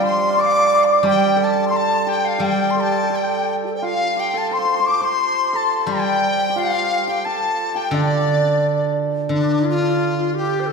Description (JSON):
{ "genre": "chinese traditional, Chinese chamber ensemble", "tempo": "88 BPM", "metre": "2/4", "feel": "rubato", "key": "D yu mode", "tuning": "A4 = 441 Hz", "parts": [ { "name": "bright reedy large dizi", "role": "melody", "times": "0.0-10.7 s", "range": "D4 to D6", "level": "-21 LUFS", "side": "left 2 dB", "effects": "none" }, { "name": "bright large dizi", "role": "second line", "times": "0.0-10.7 s", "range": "D4 to D6", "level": "-23 LUFS", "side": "left 6 dB", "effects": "none" }, { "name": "hammered dulcimer", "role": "second line", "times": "0.0-10.7 s", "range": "D4 to F5", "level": "-23 LUFS", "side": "right 5 dB", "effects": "none" }, { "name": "steel-string zither", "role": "accompaniment", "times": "0.0-10.7 s", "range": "D3 to G3", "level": "-22 LUFS", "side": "right 2 dB", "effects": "none" } ], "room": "wet concert hall reverb, RT60 2.2 s", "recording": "heard from further back in the room", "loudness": "-16 LUFS", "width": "side -4 dB against mid", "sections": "0.0-9.3 A section; 9.3-10.7 B section", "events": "none", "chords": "none", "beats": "0.36 | 1.04 1.72 | 2.41 3.11 | 3.81 4.51 | 5.20 5.88 | 6.56 7.24 | 7.92 8.61 | 9.31 10.00 | 10.68" }